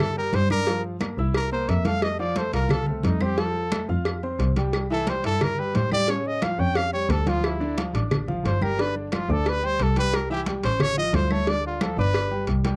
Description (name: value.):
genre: Afro-Cuban jazz.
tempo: 178 BPM.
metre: 4/4.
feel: straight.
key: C mixolydian.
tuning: A4 = 440 Hz.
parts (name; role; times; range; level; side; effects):
clear trumpet; melody; 0.0-12.5 s; C4 to G5; -29 LUFS; equal; none.
warm grand piano; accompaniment; 0.0-12.8 s; C#3 to F6; -33 LUFS; equal; none.
rich double bass; bass; 0.0-12.8 s; G1 to A2; -29 LUFS; equal; none.
claves; percussion; 0.0-12.3 s; none; -42 LUFS; equal; none.
cowbell; percussion; 0.0-12.8 s; none; -33 LUFS; equal; none.
congas; percussion; 0.2-12.8 s; none; -32 LUFS; equal; none.
room: light reverb.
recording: dry, close 1970s-style studio recording.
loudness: -24 LUFS.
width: mono.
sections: 0.0-12.8 A section.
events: trumpet solo 0.0-12.8.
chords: 0.0 Cadd9; 0.7 Gm7; 1.4 C7; 2.0 Fadd9; 4.7 C; 6.1 Aaug7; 7.4 Dm; 8.8 G5; 10.1 C; 10.8 Aaug; 11.5 Dm; 12.1 G.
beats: 0.00 0.34 | 0.68 1.01 1.35 1.69 | 2.03 2.37 2.71 3.04 | 3.38 3.72 4.06 4.40 | 4.74 5.07 5.41 5.75 | 6.09 6.42 6.76 7.10 | 7.44 7.78 8.11 8.45 | 8.79 9.12 9.46 9.79 | 10.13 10.47 10.80 11.14 | 11.47 11.81 12.15 12.48.